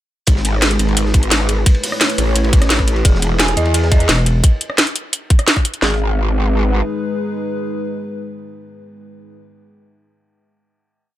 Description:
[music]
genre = dark technical drum and bass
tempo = 173 BPM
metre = 4/4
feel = straight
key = G# phrygian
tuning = A4 = 440 Hz
[part]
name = dark analog pad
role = sustained chords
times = 0.3-9.4 s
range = G#3 to C#5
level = -24 LUFS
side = equal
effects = chorus, sidechain pumping
[part]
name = growl bass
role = bass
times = 0.3-6.8 s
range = E1 to E2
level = -16 LUFS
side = equal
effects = chorus, tube saturation
[part]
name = crunchy breakbeat drum kit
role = drums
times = 0.3-4.3 s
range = hi-hat, ride cymbal, snare drum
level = -28 LUFS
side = equal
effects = high-pass filter on cymbals, high-pass filter on hats, high-pass filter on snare, high-pass filter on room
[part]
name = drum and bass drum kit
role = drums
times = 0.3-5.9 s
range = kick drum, snare drum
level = -12 LUFS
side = equal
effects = none
[part]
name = drum and bass drum kit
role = drums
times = 0.3-5.8 s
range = hi-hat, rim click, snare drum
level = -16 LUFS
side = equal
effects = none
[part]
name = dark detuned synth bell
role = arpeggios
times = 3.0-6.0 s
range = G#4 to G#5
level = -25 LUFS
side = right 2 dB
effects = chorus, sidechain pumping, tape echo
[part]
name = growling FM bass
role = bass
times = 4.1-4.4 s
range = E1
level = -14 LUFS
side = equal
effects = none
[sound]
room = digital ambience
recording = none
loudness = -13 LUFS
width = side -13 dB against mid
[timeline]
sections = 0.3-5.8 drop; 5.8-8.6 final chord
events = drop 0.3-5.8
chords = 0.3 G#m; 1.7 A; 3.0 E; 4.4 N.C.; 5.8 G#m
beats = | 0.27 0.62 0.97 1.31 | 1.66 2.01 2.35 2.70 | 3.05 3.40 3.74 4.09 | 4.44 4.78 5.13 5.48 | 5.82 6.17 6.52 6.86 | 7.21 7.56 7.90 8.25

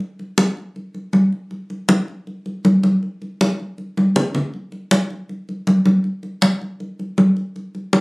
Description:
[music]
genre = latin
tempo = 159 BPM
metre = 4/4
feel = straight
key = none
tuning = none
[part]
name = congas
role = percussion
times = 0.0-8.0 s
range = none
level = -17 LUFS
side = equal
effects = none
[sound]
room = wet studio ambience, RT60 0.5 s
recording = recorded on a phone in the room, studio ambience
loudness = -17 LUFS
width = side -27 dB against mid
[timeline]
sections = 0.0-4.5 A section; 4.5-8.0 B section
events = drum fill 4.0-4.5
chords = none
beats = | 0.01 0.39 0.76 1.14 | 1.52 1.89 2.27 2.65 | 3.02 3.40 3.78 4.16 | 4.53 4.91 5.29 5.66 | 6.04 6.42 6.79 7.17 | 7.55 7.92

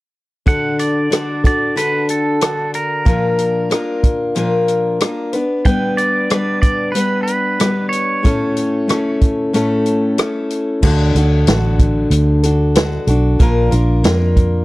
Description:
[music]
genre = folk rock and heartland rock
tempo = 93 BPM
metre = 4/4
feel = straight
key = D major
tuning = A4 = 441 Hz
[part]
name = pedal steel guitar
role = melody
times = 0.5-9.2 s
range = A4 to G5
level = -20 LUFS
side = right 2 dB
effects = none
[part]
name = picked steel-string acoustic guitar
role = accompaniment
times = 0.5-14.6 s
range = A2 to B4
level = -17 LUFS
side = left 1 dB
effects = none
[part]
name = vintage drum kit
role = drums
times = 0.5-14.5 s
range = crash cymbal, hi-hat, kick drum, rim click, snare drum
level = -16 LUFS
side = equal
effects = none
[part]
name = vintage muted fingered electric bass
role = bass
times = 10.8-14.6 s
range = A1 to F2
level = -14 LUFS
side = right 1 dB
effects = none
[sound]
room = little or no reverb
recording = dry, close 1970s-style studio recording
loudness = -13 LUFS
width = side -19 dB against mid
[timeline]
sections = 0.5-10.8 A section; 10.8-14.6 B section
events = none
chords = 0.5 D; 3.1 Bb; 5.3 G; 8.2 A; 10.8 D; 13.4 Bb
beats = | 0.46 1.11 1.76 2.41 | 3.06 3.71 4.36 5.01 | 5.66 6.31 6.96 7.60 | 8.25 8.89 9.54 10.19 | 10.83 11.47 12.12 12.76 | 13.40 14.05

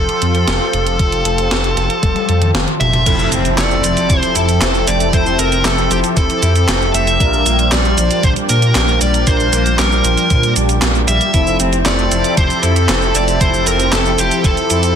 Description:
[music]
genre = synthwave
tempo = 116 BPM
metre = 4/4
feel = straight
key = F major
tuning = A4 = 440 Hz
[part]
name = dark smooth lead guitar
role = melody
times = 0.0-15.0 s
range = G4 to E5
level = -18 LUFS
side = equal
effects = overdrive, digital delay
[part]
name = lush unison pad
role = sustained chords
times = 0.0-15.0 s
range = F3 to C5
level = -21 LUFS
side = left 1 dB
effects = chorus, phaser, sidechain pumping
[part]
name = dark detuned saw bass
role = bass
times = 0.0-14.9 s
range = F1 to Bb2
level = -17 LUFS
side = equal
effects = none
[part]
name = gated 80s digital drum machine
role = drums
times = 0.1-14.9 s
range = cabasa, crash cymbal, handclaps, hi-hat, snare drum, toms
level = -19 LUFS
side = right 1 dB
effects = gated reverb, gated reverb snare
[part]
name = electronic kick drum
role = drums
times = 1.0-14.5 s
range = none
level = -16 LUFS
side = equal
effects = none
[part]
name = electric guitar at the edge of break-up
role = arpeggios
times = 3.1-14.8 s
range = D3 to E4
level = -22 LUFS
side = left 2 dB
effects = vintage 12-bit sampler grit, tape echo
[part]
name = mellow synth brass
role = stabs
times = 3.1-15.0 s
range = F3 to C5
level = -22 LUFS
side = right 4 dB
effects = chorus, cassette tape
[part]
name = impact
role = sound effects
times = 3.1-5.1 s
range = none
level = -26 LUFS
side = equal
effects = none
[sound]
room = light reverb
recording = dense, heavily limited modern master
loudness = -12 LUFS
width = side -8 dB against mid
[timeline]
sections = 0.0-3.1 A section; 3.1-15.0 B section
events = drum fill 2.0-3.1; impact 3.1-5.1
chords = 0.0 Fadd9; 3.1 Fmaj7; 7.2 Bb6; 11.3 Fmaj7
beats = 0.48 | 0.99 1.51 2.03 2.55 | 3.06 3.58 4.10 4.62 | 5.13 5.65 6.17 6.68 | 7.20 7.72 8.24 8.75 | 9.27 9.79 10.30 10.82 | 11.34 11.86 12.37 12.89 | 13.41 13.93 14.44

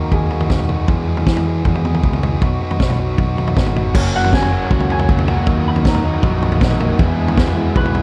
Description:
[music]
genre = indie rock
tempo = 157 BPM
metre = 4/4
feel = straight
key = unclear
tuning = A4 = 440 Hz
[part]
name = electric guitar through a small old amp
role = melody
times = 0.0-0.7, 4.2-8.0 s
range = G#4 to B5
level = -27 LUFS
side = equal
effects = tape echo
[part]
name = biting overdriven guitar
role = riff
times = 0.0-8.0 s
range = E2 to G#4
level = -25 LUFS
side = equal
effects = none
[part]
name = growling picked electric bass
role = bass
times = 0.0-8.0 s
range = F#1 to E3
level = -22 LUFS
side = equal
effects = overdrive
[part]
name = vintage drum kit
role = drums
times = 0.1-8.0 s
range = crash cymbal, kick drum, snare drum, toms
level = -19 LUFS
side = equal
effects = none
[part]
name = overdriven combo organ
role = sustained chords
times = 3.9-8.0 s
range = G#4 to D#6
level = -35 LUFS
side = equal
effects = none
[part]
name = crunchy overdriven guitar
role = riff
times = 3.9-8.0 s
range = F#2 to F#4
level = -24 LUFS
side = equal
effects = analog chorus
[sound]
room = light reverb, small room ambience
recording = dark, warm production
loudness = -16 LUFS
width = mono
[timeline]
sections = 0.0-3.9 A section; 3.9-8.0 B section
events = clean electric guitar solo 3.9-8.0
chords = 0.0 D#m; 0.9 E; 2.4 B; 3.9 F#add9; 5.5 D#m; 7.0 Eadd9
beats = 0.12 0.50 | 0.88 1.27 1.65 2.03 | 2.42 2.80 3.18 3.56 | 3.94 4.33 4.71 5.09 | 5.47 5.85 6.23 6.62 | 7.00 7.38 7.76

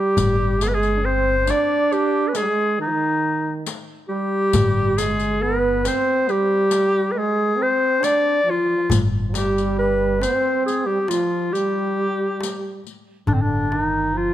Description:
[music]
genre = Arabic maqam ensemble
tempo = 137 BPM (eighths)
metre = 10/8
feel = straight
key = G maqam hijaz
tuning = A4 = 438 Hz
[part]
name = breathy clarinet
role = melody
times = 0.0-14.3 s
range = C4 to D5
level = -20 LUFS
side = left 1 dB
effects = none
[part]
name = warm trombone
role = second line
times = 0.0-14.3 s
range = D3 to D4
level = -24 LUFS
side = right 4 dB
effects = none
[part]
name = upright bass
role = bass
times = 0.2-14.3 s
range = G1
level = -24 LUFS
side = equal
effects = none
[part]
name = darbuka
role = percussion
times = 0.2-14.0 s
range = none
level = -25 LUFS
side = left 2 dB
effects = none
[part]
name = riq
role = percussion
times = 0.2-13.0 s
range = none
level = -30 LUFS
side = left 7 dB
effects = none
[sound]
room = light reverb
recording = none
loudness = -18 LUFS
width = side -12 dB against mid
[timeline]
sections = 0.0-13.3 A section; 13.3-14.3 B section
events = none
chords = none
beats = | 0.17 0.61 1.05 1.48 1.92 2.35 2.79 3.23 3.66 4.10 | 4.54 4.97 5.41 5.85 6.28 6.72 7.16 7.59 8.03 8.47 | 8.91 9.34 9.78 10.22 10.66 11.10 11.53 11.97 12.41 12.85 | 13.29 13.72 14.16

